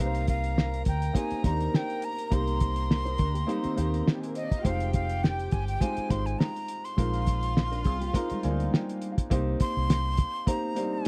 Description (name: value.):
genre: lush 1970s-style soul.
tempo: 103 BPM.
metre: 4/4.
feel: swing 54% on 16ths.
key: C minor.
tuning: A4 = 440 Hz.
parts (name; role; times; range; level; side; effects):
breathy bright jazz flute; melody; 0.0-11.1 s; Eb5 to C6; -36 LUFS; equal; none.
warm studio violin section; second line; 0.0-9.0 s; G3 to Bb5; -41 LUFS; equal; none.
warm grand piano; accompaniment; 0.0-11.1 s; G3 to Ab5; -36 LUFS; equal; none.
vintage muted fingered electric bass; bass; 0.0-10.2 s; F1 to Eb2; -32 LUFS; equal; none.
cloth-damped thuddy drum kit; drums; 0.1-11.1 s; hi-hat, kick drum, snare drum; -28 LUFS; equal; none.
mellow electric guitar; riff; 3.1-9.1 s; Eb3 to C5; -39 LUFS; equal; none.
room: little or no reverb.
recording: dry, close 1970s-style studio recording.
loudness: -28 LUFS.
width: mono.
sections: 0.0-9.3 A section; 9.3-11.1 B section.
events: grand piano fill 8.1-9.3.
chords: 0.0 Cm7; 4.6 Fm7; 7.0 Bb9sus4; 9.3 Cm7.